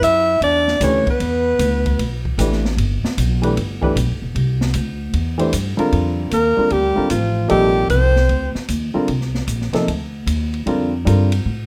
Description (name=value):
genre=modal jazz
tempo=152 BPM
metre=4/4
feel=swing 66% on 8ths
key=unclear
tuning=A4 = 435 Hz
part: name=clear alto saxophone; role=melody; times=0.0-2.2, 6.3-8.5 s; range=F4 to E5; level=-20 LUFS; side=equal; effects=plate reverb
part: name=growling trombone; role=second line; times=0.0-2.2, 6.3-8.5 s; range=F3 to E4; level=-26 LUFS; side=equal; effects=none
part: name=upright bass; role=bass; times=0.0-11.7 s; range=E1 to A2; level=-22 LUFS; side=equal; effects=none
part: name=open jazz drum kit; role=drums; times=0.0-11.4 s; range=hi-hat, kick drum, ride cymbal, snare drum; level=-30 LUFS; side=equal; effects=none
part: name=warm baby grand piano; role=accompaniment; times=0.8-11.3 s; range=C3 to C5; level=-22 LUFS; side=equal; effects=none
room=light reverb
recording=none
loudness=-18 LUFS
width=mono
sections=0.0-5.9 A section; 5.9-11.7 B section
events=none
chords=0.0 Em7; 4.3 Cadd9; 5.9 F13sus4